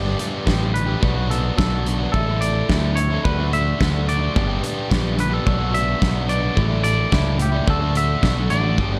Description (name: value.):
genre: indie rock.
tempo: 108 BPM.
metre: 4/4.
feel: straight.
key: D major.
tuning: A4 = 439 Hz.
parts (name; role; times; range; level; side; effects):
twangy electric guitar; melody; 0.0-9.0 s; G4 to E5; -28 LUFS; equal; slapback echo, plate reverb.
biting overdriven guitar; riff; 0.0-9.0 s; G2 to G4; -27 LUFS; equal; none.
growling picked electric bass; bass; 0.0-9.0 s; G1 to D2; -24 LUFS; equal; overdrive.
big rock drum kit; drums; 0.2-8.9 s; hi-hat, kick drum, snare drum; -25 LUFS; equal; none.
room: light reverb.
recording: dark, warm production.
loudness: -20 LUFS.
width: mono.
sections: 0.0-9.0 A section.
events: none.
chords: 0.0 G; 1.0 Bm; 2.1 Asus4; 3.2 D; 4.4 G; 5.5 Bm; 6.6 Asus4; 7.7 D.